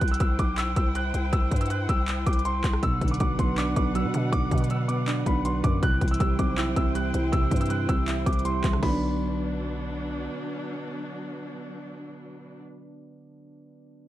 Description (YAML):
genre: hip hop, trap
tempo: 160 BPM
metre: 4/4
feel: half-time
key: B phrygian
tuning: A4 = 440 Hz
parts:
  - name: dark grand piano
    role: melody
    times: 0.0-9.9 s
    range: B5 to F#6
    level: -31 LUFS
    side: right 1 dB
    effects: none
  - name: clear studio string section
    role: sustained chords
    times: 0.0-12.6 s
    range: B2 to G5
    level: -36 LUFS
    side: equal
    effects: none
  - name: growling 808-style bass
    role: bass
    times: 0.0-10.3 s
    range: B1 to B2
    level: -28 LUFS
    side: equal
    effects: none
  - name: trap drum kit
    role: drums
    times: 0.0-8.9 s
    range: crash cymbal, handclaps, hi-hat, kick drum, rim click, snare drum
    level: -26 LUFS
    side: equal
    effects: vintage 12-bit sampler grit
  - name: soft electric-piano-like synth keys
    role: accompaniment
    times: 2.8-14.1 s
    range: B2 to E4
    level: -30 LUFS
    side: right 2 dB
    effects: chorus
room: digital ambience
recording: none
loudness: -23 LUFS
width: side -14 dB against mid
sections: 0.0-8.8 A section; 8.8-11.8 B section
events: none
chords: 0.0 C; 2.8 Bm; 5.8 C; 8.8 Bm